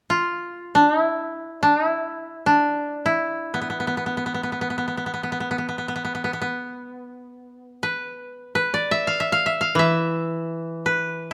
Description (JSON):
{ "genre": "japanese traditional", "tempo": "free time", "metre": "none", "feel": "none", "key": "unclear", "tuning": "A4 = 440 Hz", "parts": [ { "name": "koto", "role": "melody", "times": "0.1-11.3 s", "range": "B3 to F5", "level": "-24 LUFS", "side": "equal", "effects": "none" }, { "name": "koto", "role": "accompaniment", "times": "9.8-11.3 s", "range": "E3", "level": "-25 LUFS", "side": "equal", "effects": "none" } ], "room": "light reverb", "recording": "close, detailed microphones", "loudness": "-23 LUFS", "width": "mono", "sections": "0.0-11.3 A section", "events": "none", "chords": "none" }